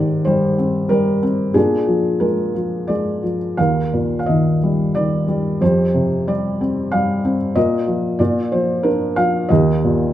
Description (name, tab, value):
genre	classical, lyrical solo piano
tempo	91 BPM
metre	3/4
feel	uneven beats, rubato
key	Eb major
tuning	A4 = 444 Hz
part	felt-muted upright piano	solo	0.0-10.1 s	Eb2 to F5	-15 LUFS	equal	none
room	moderate recital hall reverb, RT60 1.8 s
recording	none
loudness	-15 LUFS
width	side -12 dB against mid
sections	0.0-10.1 A section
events	none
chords	0.0 Abmaj7; 1.6 Bb7; 3.6 Eb; 5.6 Fsus2; 7.6 Bbsus4; 8.2 Bb; 9.5 Eb